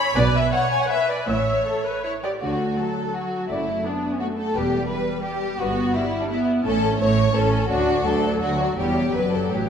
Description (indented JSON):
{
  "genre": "quick classical-period movement for string orchestra",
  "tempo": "169 BPM",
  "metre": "3/4",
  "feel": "rubato",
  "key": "D major",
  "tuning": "A4 = 440 Hz",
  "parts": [
    { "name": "dark symphonic violin section", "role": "melody", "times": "0.0-9.7 s", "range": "B4 to B5", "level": "-28 LUFS", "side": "left 4 dB", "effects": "none" },
    { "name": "warm symphonic violin section", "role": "second line", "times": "0.0-9.7 s", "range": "C#4 to B5", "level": "-24 LUFS", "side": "left 2 dB", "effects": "none" },
    { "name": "rich symphonic viola section", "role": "accompaniment", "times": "0.0-9.7 s", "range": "F#3 to E5", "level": "-26 LUFS", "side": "right 1 dB", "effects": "none" },
    { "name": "rich studio cello section", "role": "bass", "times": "0.2-9.7 s", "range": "D2 to D3", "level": "-27 LUFS", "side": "right 2 dB", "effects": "none" },
    { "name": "rich symphonic double bass section", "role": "bass", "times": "0.2-9.7 s", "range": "E1 to D2", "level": "-29 LUFS", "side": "right 4 dB", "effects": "none" }
  ],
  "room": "wet scoring stage reverb, RT60 2.1 s",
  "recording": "minimal, uncompressed stereo recording",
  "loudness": "-20 LUFS",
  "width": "side -7 dB against mid",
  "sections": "0.0-2.4 A section; 2.4-9.7 B section",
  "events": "none",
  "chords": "0.2 Bmadd11; 1.3 A; 2.4 D; 3.5 D/F#; 4.5 Em; 5.6 G6; 6.6 A; 7.7 D; 8.8 Em6; 9.1 D/F#"
}